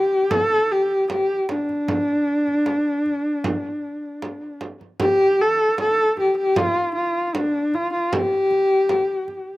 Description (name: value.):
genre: mongolian traditional, Mongolian folk.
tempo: 77 BPM.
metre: 4/4.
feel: straight.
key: D yu mode.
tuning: A4 = 440 Hz.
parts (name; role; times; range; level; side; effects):
rich horsehead fiddle; melody; 0.0-9.6 s; D4 to A4; -19 LUFS; equal; none.
frame drum; percussion; 0.3-9.4 s; none; -28 LUFS; right 2 dB; none.
room: little or no reverb.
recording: recorded outdoors, with no room sound.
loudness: -18 LUFS.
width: side -18 dB against mid.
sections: 0.0-5.0 A section; 5.0-9.6 B section.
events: none.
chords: none.